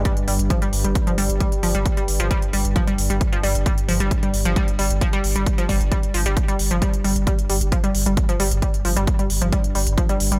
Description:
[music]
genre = driving peak-time techno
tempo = 133 BPM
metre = 4/4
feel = straight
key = unclear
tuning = A4 = 439 Hz
[part]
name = saturated sub bass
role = bass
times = 0.0-10.4 s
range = G1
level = -24 LUFS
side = equal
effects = sidechain pumping, low-pass filter
[part]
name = deep dark ambient pad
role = drone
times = 0.0-10.4 s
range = G2 to G3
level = -32 LUFS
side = equal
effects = chorus, built-in reverb, sidechain pumping
[part]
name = analog pluck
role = riff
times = 0.1-10.4 s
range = F3 to G3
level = -27 LUFS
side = equal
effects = chorus, overdrive, sidechain pumping, delay
[part]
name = electronic hi-hat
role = drums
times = 0.1-10.4 s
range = none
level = -30 LUFS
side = equal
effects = overdrive, sidechain pumping on hats, studio reverb
[part]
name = electronic kick drum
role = drums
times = 0.1-10.1 s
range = none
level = -23 LUFS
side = equal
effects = overdrive, studio reverb
[sound]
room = digital ambience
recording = none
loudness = -20 LUFS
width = mono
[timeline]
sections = 0.0-10.4 A section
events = none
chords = none

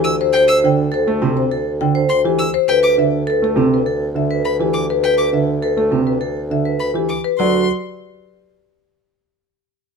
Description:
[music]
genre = classical, minimalist pattern music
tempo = 102 BPM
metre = 4/4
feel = straight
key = D mixolydian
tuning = A4 = 440 Hz
[part]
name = marimba with medium mallets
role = melody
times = 0.0-7.7 s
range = G4 to G5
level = -19 LUFS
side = left 13 dB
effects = none
[part]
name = warm concert grand piano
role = accompaniment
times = 0.0-7.7 s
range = C3 to A3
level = -20 LUFS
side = right 5 dB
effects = none
[part]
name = clear violin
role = arpeggios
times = 0.0-7.7 s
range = G5 to E6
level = -23 LUFS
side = left 2 dB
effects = none
[part]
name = mellow bassoon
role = bass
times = 0.0-7.7 s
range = D2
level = -23 LUFS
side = equal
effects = none
[part]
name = vibraphone with medium hard mallets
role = arpeggios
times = 0.3-7.7 s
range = C4 to C5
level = -20 LUFS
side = right 8 dB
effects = none
[sound]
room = light reverb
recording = none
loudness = -14 LUFS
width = side -5 dB against mid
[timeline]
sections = 0.0-7.4 A section; 7.4-9.7 B section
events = none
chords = 0.0 D7sus4; 2.7 Amadd9/D; 7.4 D

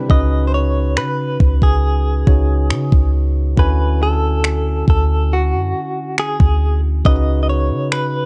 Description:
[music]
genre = contemporary R&B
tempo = 69 BPM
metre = 4/4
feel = straight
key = unclear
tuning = A4 = 440 Hz
[part]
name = barky tine electric piano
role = accompaniment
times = 0.0-8.3 s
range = C3 to G#5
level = -26 LUFS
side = equal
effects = none
[part]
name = direct-recorded clean electric guitar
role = melody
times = 0.1-8.3 s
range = F#4 to D#5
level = -24 LUFS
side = equal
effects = tremolo, slapback echo
[part]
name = clean 808-style bass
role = bass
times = 0.1-8.3 s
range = C#2 to C#3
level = -18 LUFS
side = equal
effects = none
[part]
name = crisp 8-bit digital drum machine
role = drums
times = 0.1-8.1 s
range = finger snaps, kick drum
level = -17 LUFS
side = equal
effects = none
[sound]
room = little or no reverb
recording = nothing above 10.4 kHz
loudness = -16 LUFS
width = mono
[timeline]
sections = 0.1-8.3 A section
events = hi-hats muted 0.1-8.3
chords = 0.1 C#7sus4; 3.6 Dmaj9#11; 7.1 C#7sus4

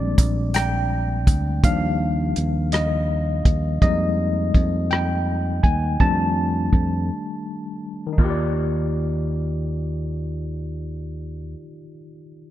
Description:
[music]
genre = slow six-eight R&B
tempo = 55 BPM (dotted quarters)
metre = 6/8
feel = straight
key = Eb major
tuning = A4 = 438 Hz
[part]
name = barky tine electric piano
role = accompaniment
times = 0.0-12.5 s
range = Eb3 to A5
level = -25 LUFS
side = left 2 dB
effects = overdrive, fast stereo tremolo
[part]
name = fingered electric bass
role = bass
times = 0.0-11.5 s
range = Bb1 to F2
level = -23 LUFS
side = equal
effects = none
[part]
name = warm soul drum kit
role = drums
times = 0.2-8.3 s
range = crash cymbal, hi-hat, kick drum, rim click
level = -19 LUFS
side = equal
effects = none
[sound]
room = light reverb, small room ambience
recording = bright 1980s-style digital production, low-pass filter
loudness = -19 LUFS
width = side -13 dB against mid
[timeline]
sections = 0.0-8.2 A section; 8.2-12.5 B section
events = tine electric piano solo 0.0-8.2; filter sweep 0.0-8.2; break 7.1-8.2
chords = 0.0 Bb13; 1.6 Ebmaj9; 3.8 Fm11; 6.0 F13; 8.2 Ebmaj9

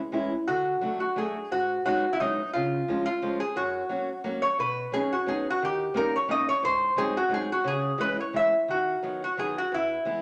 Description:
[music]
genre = musette waltz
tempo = 176 BPM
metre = 3/4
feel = swing 55% on 8ths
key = B major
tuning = A4 = 440 Hz
[part]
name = picked old ladder-braced acoustic guitar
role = accompaniment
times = 0.1-10.2 s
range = E2 to F#4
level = -34 LUFS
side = equal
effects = none
[part]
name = metal-body resonator slide guitar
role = melody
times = 0.5-10.2 s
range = D#4 to E5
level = -28 LUFS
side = equal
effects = none
[sound]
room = wet studio reverb, RT60 0.7 s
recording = none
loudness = -27 LUFS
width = mono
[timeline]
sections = 0.0-10.2 A section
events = none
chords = 0.5 D; 1.5 G#m7; 2.5 C#; 3.5 F#; 4.6 Badd9; 5.6 D#7; 6.6 G#7; 7.7 C#m; 8.7 B/D#; 9.7 E

